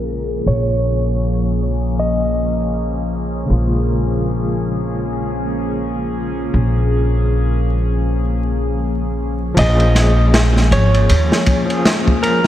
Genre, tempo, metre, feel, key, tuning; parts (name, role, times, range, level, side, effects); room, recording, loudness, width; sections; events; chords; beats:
trip hop; 79 BPM; 4/4; swing 58% on 16ths; Bb minor; A4 = 439 Hz
clean lap steel guitar; melody; 0.0-3.1, 9.6-12.5 s; Bb4 to Eb5; -22 LUFS; right 1 dB; vintage 12-bit sampler grit, dub echo
overdriven tine electric piano; accompaniment; 0.0-12.5 s; Db3 to Ab4; -24 LUFS; left 1 dB; tremolo, vintage 12-bit sampler grit, tape echo
warbly tape-like pad; sustained chords; 0.0-12.5 s; F3 to Ab4; -22 LUFS; left 2 dB; chorus, built-in reverb, phaser, vintage 12-bit sampler grit
upright bass; bass; 0.0-11.3 s; Ab1 to Eb2; -17 LUFS; equal
crunchy breakbeat drum kit; drums; 9.6-12.5 s; kick drum, ride cymbal, snare drum; -17 LUFS; equal
light reverb, small room ambience; vinyl crackle, low-pass filter; -14 LUFS; side -12 dB against mid
0.0-9.6 A section; 9.6-12.5 B section
filter sweep 0.0-9.6
0.0 Bbm7
| 0.46 1.22 1.97 2.73 | 3.49 4.25 5.01 5.77 | 6.53 7.29 8.05 8.81 | 9.57 10.33 11.09 11.85